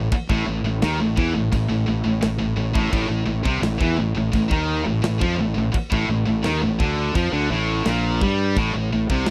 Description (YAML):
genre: heavy metal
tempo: 85 BPM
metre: 4/4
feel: straight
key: A minor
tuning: A4 = 440 Hz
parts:
  - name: heavy high-gain guitar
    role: riff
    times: 0.0-9.3 s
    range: A2 to G3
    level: -30 LUFS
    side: equal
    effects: distortion
  - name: high-gain distorted guitar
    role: riff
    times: 0.0-9.3 s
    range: A2 to G3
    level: -26 LUFS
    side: equal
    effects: distortion
  - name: fuzz fingered electric bass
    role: bass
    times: 0.0-9.3 s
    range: A1 to G2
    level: -26 LUFS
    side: equal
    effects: overdrive
  - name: tight metal drum kit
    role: drums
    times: 0.1-9.3 s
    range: crash cymbal, kick drum, snare drum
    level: -28 LUFS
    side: equal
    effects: none
room: little or no reverb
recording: dry, close 1970s-style studio recording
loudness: -21 LUFS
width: mono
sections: 0.0-9.3 A section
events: none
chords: none